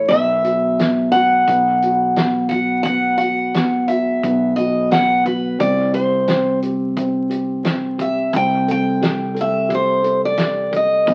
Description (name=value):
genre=acoustic folk-pop ballad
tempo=88 BPM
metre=4/4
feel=straight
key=unclear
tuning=A4 = 440 Hz
part: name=picked steel-string acoustic guitar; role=melody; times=0.0-11.1 s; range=B4 to G5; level=-19 LUFS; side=equal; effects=none
part: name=felt-muted upright piano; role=accompaniment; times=0.0-11.1 s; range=A3 to A4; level=-23 LUFS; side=equal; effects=none
part: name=fingered electric bass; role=bass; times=0.0-11.1 s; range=B1 to C2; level=-29 LUFS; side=equal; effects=none
part: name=loose indie drum kit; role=drums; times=0.1-11.1 s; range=hi-hat, kick drum, snare drum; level=-26 LUFS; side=equal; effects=none
room=wet studio reverb, RT60 0.7 s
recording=very old 78 rpm record, vinyl crackle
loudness=-18 LUFS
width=mono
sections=0.0-11.1 A section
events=none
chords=0.1 B5; 5.6 C5; 8.3 Am7/C